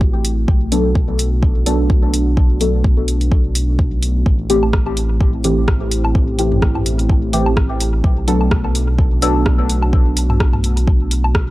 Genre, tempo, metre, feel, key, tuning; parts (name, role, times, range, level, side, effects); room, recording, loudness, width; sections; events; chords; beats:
dub techno; 127 BPM; 4/4; swing 56% on 16ths; A4 = 440 Hz
dark analog pad; sustained chords; 0.0-11.5 s; A3 to G4; -24 LUFS; equal; chorus, sidechain pumping
round analog bass; bass; 0.0-11.5 s; A1 to B1; -18 LUFS; equal; tube saturation, sidechain pumping
electronic kick drum; drums; 0.0-11.5 s; -15 LUFS; equal
deep house drum kit; drums; 0.2-11.5 s; hi-hat, rim click; -23 LUFS; equal; dub echo
deep mellow chord stab; stabs; 0.7-9.4 s; E3 to A4; -20 LUFS; equal; chorus, phaser, cassette tape, sidechain pumping, dub echo
electronic woodblock and toms; percussion; 4.6-11.3 s; -24 LUFS; equal; sidechain pumping on perc, sidechain pumping on toms, dub echo
little or no reverb; dry, gritty hardware recording; -13 LUFS; side -17 dB against mid
0.0-11.5 A section
filter sweep on synth stab 0.0-11.5
0.5 Bm7; 4.3 Am7; 8.0 Bm7
0.01 | 0.48 0.95 1.43 1.90 | 2.37 2.84 3.32 3.79 | 4.26 4.73 5.21 5.68 | 6.15 6.62 7.10 7.57 | 8.04 8.51 8.99 9.46 | 9.93 10.40 10.88 11.35